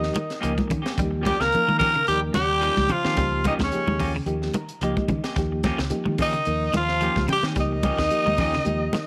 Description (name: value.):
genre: afrobeat.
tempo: 109 BPM.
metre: 4/4.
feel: swing 55% on 16ths.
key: Eb mixolydian.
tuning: A4 = 439 Hz.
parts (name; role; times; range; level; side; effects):
raspy tenor saxophone; melody; 0.0-9.1 s; Db4 to Bb4; -26 LUFS; equal; none.
bright trumpet; second line; 0.0-9.1 s; Db5 to Bb5; -35 LUFS; equal; none.
muted trombone section; second line; 0.0-9.1 s; Db3 to Bb3; -37 LUFS; equal; none.
mellow reed electric piano; accompaniment; 0.0-8.9 s; F3 to Bb5; -32 LUFS; equal; fast tremolo.
fingered electric bass; bass; 0.0-8.9 s; Db2 to Eb3; -31 LUFS; equal; none.
tight funk drum kit; drums; 0.0-9.1 s; hi-hat, kick drum, snare drum; -33 LUFS; equal; none.
clean electric guitar; stabs; 0.1-9.0 s; F3 to G4; -36 LUFS; equal; none.
clean electric guitar; arpeggios; 0.2-9.1 s; Db3 to G3; -37 LUFS; equal; none.
congas; percussion; 0.2-9.1 s; none; -30 LUFS; equal; none.
room: light reverb, small room ambience.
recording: none.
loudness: -23 LUFS.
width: mono.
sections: 0.0-9.1 A section.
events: reed electric piano fill 4.3-5.4.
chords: 0.0 Eb9.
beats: 0.42 | 0.97 1.52 2.07 2.62 | 3.17 3.72 4.27 4.82 | 5.37 5.92 6.47 7.02 | 7.57 8.12 8.67.